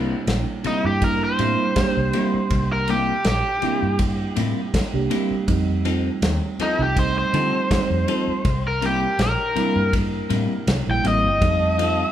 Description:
straight-eighth soul blues; 81 BPM; 4/4; swing 54% on 16ths; C mixolydian; A4 = 439 Hz
reed electric piano; accompaniment; 0.0-12.1 s; D3 to G4; -26 LUFS; right 6 dB
clean electric guitar; stabs; 0.0-12.0 s; C3 to A4; -26 LUFS; left 3 dB
vintage muted fingered electric bass; bass; 0.0-12.0 s; G1 to D3; -25 LUFS; equal
warm soul drum kit; drums; 0.3-12.0 s; kick drum, ride cymbal, snare drum; -26 LUFS; equal
crunchy overdriven guitar; melody; 0.7-12.1 s; Eb4 to G5; -23 LUFS; left 1 dB; analog delay
warm studio string section; sustained chords; 11.4-12.1 s; F5 to Eb6; -31 LUFS; left 3 dB
moderate large studio reverb, RT60 0.9 s; band playing live in one room; -18 LUFS; side -11 dB against mid
0.0-12.1 A section
overdriven electric guitar solo 0.0-12.1
0.0 C7; 5.5 F7; 8.5 C7; 11.4 F7

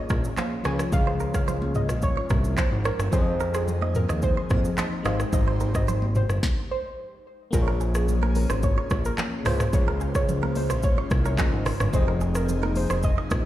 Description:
afrobeats; 109 BPM; 4/4; straight; A4 = 440 Hz
soft round pluck; melody; 0.0-13.2 s; Ab4 to Ab5; -33 LUFS; equal; chorus, phaser
FM electric piano; accompaniment; 0.0-13.5 s; Db3 to Eb5; -34 LUFS; left 3 dB; chorus
airy breathy pad; sustained chords; 0.0-13.5 s; F3 to C5; -35 LUFS; left 1 dB; chorus, phaser
direct-recorded clean electric guitar; riff; 0.0-13.4 s; Ab4 to Eb5; -34 LUFS; right 6 dB; ping-pong delay
fat analog bass; bass; 0.1-13.5 s; F1 to F2; -25 LUFS; equal
afro-pop drum kit; drums; 0.1-13.4 s; handclaps, hi-hat, kick drum, rim click, shaker, snare drum, toms; -25 LUFS; equal
congas; percussion; 0.1-13.4 s; -34 LUFS; right 2 dB
little or no reverb; played on a big sound system in a bare room, stone room reverb; -22 LUFS; side -14 dB against mid
0.0-7.5 A section; 7.5-13.5 B section
stop 6.4-7.5
0.0 Bbm7; 0.7 Dbmaj7; 3.1 Fm7; 5.1 Abmaj7; 7.5 Bbm7; 9.5 Dbmaj7; 11.9 Fm7

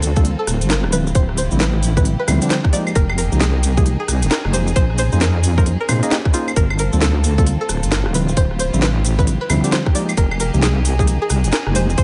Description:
UK garage, two-step garage; 133 BPM; 4/4; swing 62% on 16ths; A4 = 438 Hz
rich studio violin section; sustained chords; 0.0-12.0 s; Bb3 to C5; -32 LUFS; equal; sidechain pumping
deep soft wobble bass; bass; 0.0-12.0 s; D1 to Bb2; -20 LUFS; equal; chorus, sidechain pumping
garage drum kit; drums; 0.0-12.0 s; claves, hi-hat, rim click, snare drum; -25 LUFS; equal
cabasa; percussion; 0.0-12.0 s; -31 LUFS; equal
string-like resonator pluck; melody; 0.2-12.0 s; F4 to D5; -28 LUFS; equal; chorus, delay
tine electric piano; stabs; 0.2-11.9 s; D3 to Eb5; -24 LUFS; equal
electronic kick drum; drums; 0.2-12.0 s; -18 LUFS; equal
digital ambience; nothing above 10.6 kHz; -17 LUFS; mono
0.0-12.0 A section
0.0 Gm11; 0.9 Dm11; 2.7 Fm11; 4.8 Bbm11; 6.6 Gm11; 8.1 Dm11; 9.9 Fm11

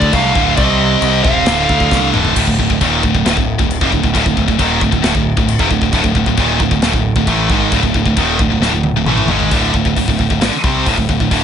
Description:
heavy metal; 134 BPM; 4/4; straight; D phrygian; A4 = 440 Hz
dark smooth lead guitar; melody; 0.0-2.1 s; D5 to F5; -17 LUFS; right 2 dB; overdrive, ping-pong delay
heavy high-gain guitar; riff; 0.0-11.4 s; D2 to C4; -17 LUFS; left 15 dB; distortion
high-gain distorted guitar; riff; 0.0-11.4 s; D2 to C4; -17 LUFS; right 9 dB; distortion
growling picked electric bass; bass; 0.0-11.4 s; D1 to D2; -19 LUFS; equal; overdrive
modern studio drum kit; drums; 0.0-11.4 s; china cymbal, crash cymbal, hi-hat, kick drum, snare drum, toms; -18 LUFS; equal
little or no reverb; nothing above 11.0 kHz; -11 LUFS; side -8 dB against mid
0.0-2.4 A section; 2.4-9.5 B section; 9.5-11.4 C section
drum fill 1.9-2.4, 8.6-9.5
0.0 Dm; 0.6 Cm; 1.5 Dm; 2.4 D5

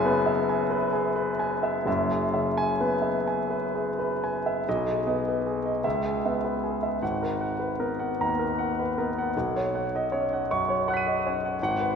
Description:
classical, impressionist solo piano; 41-54 BPM (dotted quarters); 6/8; rubato; B major; A4 = 442 Hz
clear concert grand piano; solo; 0.0-12.0 s; F#1 to D#7; -24 LUFS; equal
wet concert hall reverb, RT60 2.0 s; heard from further back in the room; -24 LUFS; side -6 dB against mid
0.0-4.7 A section; 4.7-12.0 B section
0.0 F#11; 4.7 B6; 5.8 C#m7; 7.0 G#m9; 9.3 Badd9

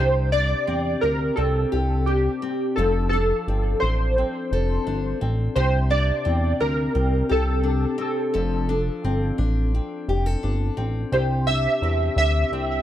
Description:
indie pop, bedroom pop; 86 BPM; 4/4; straight; A4 = 440 Hz
warm analog keys; melody; 0.0-12.8 s; G4 to E5; -24 LUFS; right 1 dB; ensemble chorus, tape echo
picked steel-string acoustic guitar; accompaniment; 0.0-12.8 s; C3 to C5; -27 LUFS; left 4 dB; wide subtle chorus, warbly pitch drift
chorused synth bass; bass; 0.0-12.8 s; F1 to E2; -23 LUFS; equal
little or no reverb; dry, close 1970s-style studio recording; -20 LUFS; side -11 dB against mid
0.0-12.8 A section
0.0 Csus2; 2.8 F6; 5.6 Csus2; 8.3 F6; 11.1 Cadd9

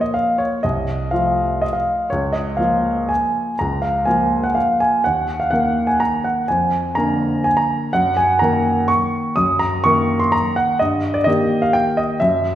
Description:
classical, piano waltz; 124 BPM; 3/4; uneven beats, rubato; Bb minor; A4 = 440 Hz
clear grand piano; solo; 0.0-12.6 s; C2 to Eb6; -16 LUFS; equal
wet recital hall reverb, RT60 1.3 s; recorded in a church or concert hall; -16 LUFS; side -12 dB against mid
0.0-12.6 A section
0.0 Bb5; 0.6 F7/C; 2.1 Bbm/Db; 5.1 Eb5; 6.5 Bb7/F; 7.9 Ebm/Gb; 10.8 Eb/G

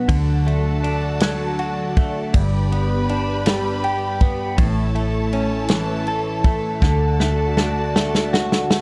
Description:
six-eight pop ballad; 53 BPM (dotted quarters); 6/8; straight; D major; A4 = 439 Hz
direct-recorded clean electric guitar; accompaniment; 0.0-8.8 s; G2 to A4; -24 LUFS; equal; phaser
vintage muted fingered electric bass; bass; 0.0-8.8 s; G1 to D2; -26 LUFS; equal
warm studio string section; sustained chords; 0.1-8.8 s; E4 to B5; -30 LUFS; equal
natural country drum kit; drums; 0.1-8.8 s; kick drum, ride cymbal, snare drum; -21 LUFS; equal; vintage 12-bit sampler grit
light reverb, studio ambience; -20 LUFS; mono
0.0-8.8 A section
drum fill 6.8-8.8
0.1 D; 2.3 G; 4.6 A; 6.8 D

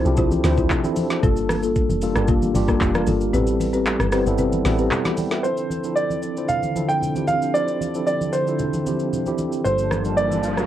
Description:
amapiano; 114 BPM; 4/4; straight; D minor; A4 = 440 Hz
mellow tine electric piano; accompaniment; 0.0-10.7 s; F3 to B5; -24 LUFS; equal; medium stereo tremolo, cassette tape, plate reverb
folk marimba with soft mallets; stabs; 0.0-4.9 s; Bb3 to C5; -25 LUFS; left 4 dB; cassette tape, analog delay, plate reverb
deep log drum bass; bass; 0.0-4.9 s; F1 to D2; -23 LUFS; equal
smooth R&B drum kit; drums; 0.1-10.7 s; handclaps, hi-hat, kick drum, rim click, shaker, snare drum; -25 LUFS; equal; cassette tape
congas; percussion; 0.2-10.4 s; -29 LUFS; right 1 dB
warm baby grand piano; melody; 5.4-10.7 s; C5 to G5; -23 LUFS; right 2 dB; analog delay, plate reverb
hollow soft pad; sustained chords; 5.4-10.7 s; D3 to A5; -29 LUFS; right 1 dB; chorus, sidechain pumping, cassette tape
hollow-body short-scale fingered electric bass; bass; 9.7-10.7 s; G1; -27 LUFS; equal
riser; sound effects; 10.0-10.7 s; -29 LUFS; right 1 dB
light reverb; home recording on cassette; -18 LUFS; side -12 dB against mid
0.0-5.4 A section; 5.4-10.7 B section
drop 0.0-5.4; kick muted 3.3-5.4; riser 10.0-10.7
0.0 Dm9; 1.2 Gm9; 3.3 Am9; 5.4 Dm9; 9.7 Gm9

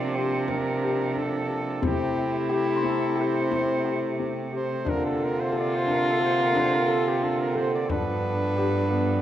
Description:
contemporary instrumental, chamber music in an uneven meter; 178 BPM (eighths); 9/8; straight; A4 = 442 Hz
clear flugelhorn; melody; 0.0-9.2 s; G4 to D5; -30 LUFS; right 1 dB
warm French horn; second line; 0.0-9.2 s; D4 to F4; -27 LUFS; left 1 dB
hand-pumped harmonium; sustained chords; 0.0-9.2 s; C3 to A5; -32 LUFS; right 1 dB
clear cello; bass; 0.0-9.2 s; G2 to C3; -29 LUFS; right 3 dB
worn celesta; texture; 0.0-4.7 s; G5 to C6; -37 LUFS; left 10 dB
felt-muted upright piano; arpeggios; 0.2-9.1 s; B3 to A4; -31 LUFS; left 4 dB
frame drum; percussion; 0.5-8.2 s; -33 LUFS; left 2 dB
wet recital hall reverb, RT60 1.4 s; dark, warm production; -23 LUFS; side -11 dB against mid
0.0-9.2 A section
0.0 Gm9/C; 1.8 Am7/C; 4.9 Bbmaj7/C; 7.9 G9

